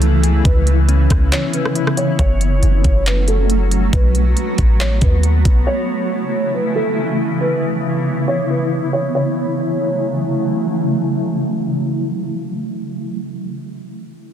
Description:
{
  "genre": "hip hop, atmospheric cloud-rap",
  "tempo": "138 BPM",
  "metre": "4/4",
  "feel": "half-time",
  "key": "F# minor",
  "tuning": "A4 = 439 Hz",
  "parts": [
    { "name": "felt-muted upright piano", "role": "melody", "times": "0.0-10.4 s", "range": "A4 to C#5", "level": "-23 LUFS", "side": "right 1 dB", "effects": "low-pass filter, tape echo" },
    { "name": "granular cloud pad", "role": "sustained chords", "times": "0.0-12.5 s", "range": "C#3 to F#4", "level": "-19 LUFS", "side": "equal", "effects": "built-in reverb, sidechain pumping, low-pass filter" },
    { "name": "mellow electric guitar", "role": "arpeggios", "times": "0.0-2.2 s", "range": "C#3 to G#5", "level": "-26 LUFS", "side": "left 8 dB", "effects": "low-pass filter, tape echo" },
    { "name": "clean 808-style bass", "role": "bass", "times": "0.0-5.7 s", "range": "F#1 to D#2", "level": "-14 LUFS", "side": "equal", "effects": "none" },
    { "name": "smooth R&B drum kit", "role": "drums", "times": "0.0-5.6 s", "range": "handclaps, hi-hat, kick drum, rim click", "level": "-17 LUFS", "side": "equal", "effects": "none" }
  ],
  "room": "light reverb",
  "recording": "dense, heavily limited modern master",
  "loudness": "-14 LUFS",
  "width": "side -9 dB against mid",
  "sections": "0.0-2.2 A section; 2.2-9.1 B section; 9.1-12.6 C section",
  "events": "break 1.3-2.2; filter sweep 2.2-9.1",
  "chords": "0.5 C#m7; 2.2 F#m; 3.9 B5; 5.7 A; 7.4 C#m7; 9.1 F#m7"
}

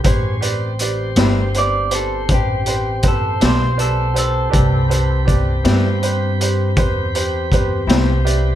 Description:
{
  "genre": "slow blues",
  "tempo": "54 BPM (dotted quarters)",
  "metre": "12/8",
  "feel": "straight",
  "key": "A minor",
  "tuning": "A4 = 438 Hz",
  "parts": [
    { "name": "bright grand piano", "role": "accompaniment", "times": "0.0-8.6 s", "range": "G4 to E5", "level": "-24 LUFS", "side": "right 3 dB", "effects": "none" },
    { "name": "tonewheel organ", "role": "sustained chords", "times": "0.0-8.6 s", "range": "C4 to C5", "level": "-26 LUFS", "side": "equal", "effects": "slow rotary speaker" },
    { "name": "raw garage drum kit", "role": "drums", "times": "0.0-8.4 s", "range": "hi-hat, kick drum, snare drum", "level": "-18 LUFS", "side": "equal", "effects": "none" },
    { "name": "upright bass", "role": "bass", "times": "0.1-8.6 s", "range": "G1 to G2", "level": "-19 LUFS", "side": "equal", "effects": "none" },
    { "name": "clean electric guitar", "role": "accompaniment", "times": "1.2-8.1 s", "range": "A2 to E4", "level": "-22 LUFS", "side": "left 7 dB", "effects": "tremolo" },
    { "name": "electric guitar through a small old amp", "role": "melody", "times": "1.6-5.6 s", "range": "G4 to D5", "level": "-22 LUFS", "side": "right 1 dB", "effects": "spring reverb, plate reverb" }
  ],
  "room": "light reverb",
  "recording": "dark, warm production",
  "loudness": "-15 LUFS",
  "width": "side -11 dB against mid",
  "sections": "0.0-8.6 A section",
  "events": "grand piano fill 7.9-8.6",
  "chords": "0.0 Am7"
}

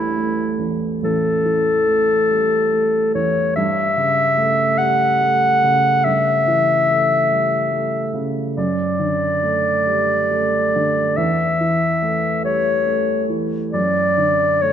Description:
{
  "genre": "classical, romantic duo for clarinet and grand piano",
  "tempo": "44-49 BPM (dotted quarters)",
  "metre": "12/8",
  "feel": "rubato",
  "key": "unclear",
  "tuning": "A4 = 440 Hz",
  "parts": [
    { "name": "mellow clarinet", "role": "melody", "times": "0.0-14.7 s", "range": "E4 to F#5", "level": "-17 LUFS", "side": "left 1 dB", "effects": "none" },
    { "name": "dark baby grand piano", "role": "accompaniment", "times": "0.0-14.7 s", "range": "A1 to A3", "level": "-21 LUFS", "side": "right 2 dB", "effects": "none" }
  ],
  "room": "wet scoring stage reverb, RT60 1.9 s",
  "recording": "none",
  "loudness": "-16 LUFS",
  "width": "side -9 dB against mid",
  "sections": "0.0-14.7 A section",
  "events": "none",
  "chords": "0.0 A5; 3.6 A7/G; 8.6 D/F#; 11.2 A7/E; 13.7 D/F#"
}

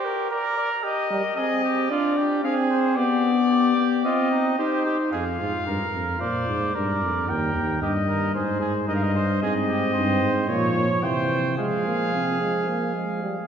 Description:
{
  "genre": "classical, imitative canzona for brass ensemble",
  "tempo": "112 BPM",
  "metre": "4/4",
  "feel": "straight",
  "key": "C minor, F minor from 9.4 s",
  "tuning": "A4 = 441 Hz",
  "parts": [
    { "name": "clear trumpet", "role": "melody", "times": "0.0-13.5 s", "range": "Bb4 to G5", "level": "-27 LUFS", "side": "left 4 dB", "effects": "none" },
    { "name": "clear trumpet", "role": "second line", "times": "0.0-13.5 s", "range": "Eb4 to Db5", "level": "-28 LUFS", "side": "right 4 dB", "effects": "none" },
    { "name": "warm euphonium", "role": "accompaniment", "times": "1.1-5.1, 9.4-13.4 s", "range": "E3 to Eb4", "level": "-24 LUFS", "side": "equal", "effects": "none" },
    { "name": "dark bass trombone", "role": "bass", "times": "5.1-13.5 s", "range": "Eb2 to F3", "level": "-26 LUFS", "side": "right 1 dB", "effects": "none" }
  ],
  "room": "wet church reverb, RT60 2.7 s",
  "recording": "heard from further back in the room, nothing above 7.7 kHz",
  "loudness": "-21 LUFS",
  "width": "side -8 dB against mid",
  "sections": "0.0-5.1 A section; 5.1-13.5 B section",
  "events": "none",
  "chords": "0.0 Gm; 0.8 Cm/G; 1.9 Ddim; 3.0 G/B; 4.0 Cm; 5.1 N.C.; 6.2 Bb; 7.3 Eb; 8.4 Ab; 10.5 Bbm; 11.0 C; 11.6 Fm"
}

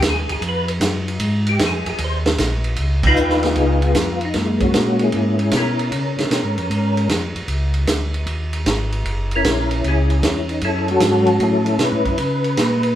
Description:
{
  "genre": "soul jazz organ trio",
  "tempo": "153 BPM",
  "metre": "4/4",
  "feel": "swing 67% on 8ths",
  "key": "unclear",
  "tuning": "A4 = 440 Hz",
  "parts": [
    { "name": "percussive tonewheel organ", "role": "melody", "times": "0.0-13.0 s", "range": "Gb3 to C5", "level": "-19 LUFS", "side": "left 1 dB", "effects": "slow rotary speaker, chorus vibrato" },
    { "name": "mellow tonewheel organ", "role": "bass", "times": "0.0-13.0 s", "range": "Gb1 to Db3", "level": "-20 LUFS", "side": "equal", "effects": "slow rotary speaker" },
    { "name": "vintage drum kit", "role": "drums", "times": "0.0-12.9 s", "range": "crash cymbal, hi-hat, kick drum, ride cymbal, snare drum", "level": "-22 LUFS", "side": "right 2 dB", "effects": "none" }
  ],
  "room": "wet small room reverb, RT60 0.5 s",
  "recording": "band playing live in one room",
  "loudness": "-16 LUFS",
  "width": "side -11 dB against mid",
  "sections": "0.0-2.8 A section; 2.8-13.0 B section",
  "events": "tonewheel organ solo 0.0-2.8; band accent 3.0",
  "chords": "0.0 Dbadd9 (rootless); 1.2 Absus2; 2.8 Db9; 4.4 Gb9; 5.9 Dbadd9; 9.1 Gb9; 10.6 Gbm7; 12.2 Db7(no3)"
}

